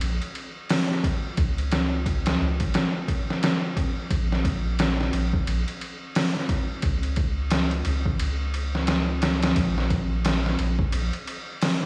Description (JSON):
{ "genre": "trip hop", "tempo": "88 BPM", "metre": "4/4", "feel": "swing 60% on 16ths", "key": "Bb minor", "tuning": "A4 = 441 Hz", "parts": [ { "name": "soft dub sub bass", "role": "bass", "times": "0.0-11.1 s", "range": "F1 to Db2", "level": "-28 LUFS", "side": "equal", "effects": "none" }, { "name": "trip hop sampler-style drum kit", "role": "drums", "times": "0.0-11.9 s", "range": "hi-hat, kick drum, ride cymbal, snare drum", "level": "-26 LUFS", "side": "equal", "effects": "none" } ], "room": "moderate lush hall reverb, RT60 2.8 s", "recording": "dreamy mix soaked in reverb, studio reverb", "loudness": "-25 LUFS", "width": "mono", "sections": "0.0-11.9 A section", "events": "none", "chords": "none" }